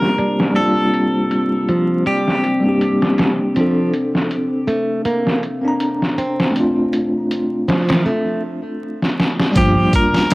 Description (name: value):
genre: trip hop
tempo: 80 BPM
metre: 4/4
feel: swing 54% on 16ths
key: G minor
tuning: A4 = 442 Hz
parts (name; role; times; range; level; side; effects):
- clean electric guitar; melody; 0.0-3.1, 9.6-10.3 s; G4 to Bb4; -22 LUFS; equal; cassette tape, tape echo
- bell-like tine electric piano; accompaniment; 0.0-10.3 s; G3 to Bb5; -19 LUFS; equal; tremolo, tape echo
- dark analog pad; sustained chords; 0.0-10.3 s; C4 to D5; -24 LUFS; left 1 dB; chorus
- trip hop sampler-style drum kit; drums; 0.0-10.3 s; hi-hat, kick drum, snare drum; -19 LUFS; equal; low-pass filter on hats, cassette tape, low-pass filter on snare, low-pass filter on kick
- flamenco guitar; arpeggios; 0.2-9.9 s; F3 to D4; -22 LUFS; right 1 dB; vintage 12-bit sampler grit, low-pass filter, tape echo
- upright bass; bass; 9.6-9.7 s; G1; -21 LUFS; equal; tube saturation
room: light reverb, digital ambience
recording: home recording on cassette, vinyl crackle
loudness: -15 LUFS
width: side -22 dB against mid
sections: 0.0-9.6 A section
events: filter sweep on nylon-string guitar 0.0-9.6; break 8.1-9.6; drum fill 9.0-9.6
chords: 0.0 Gm7; 3.6 Bbmaj9; 6.6 Dm7; 9.6 Gm7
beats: | 0.56 1.31 2.06 2.81 | 3.56 4.31 5.06 5.81 | 6.56 7.31 8.06 8.81 | 9.56 10.31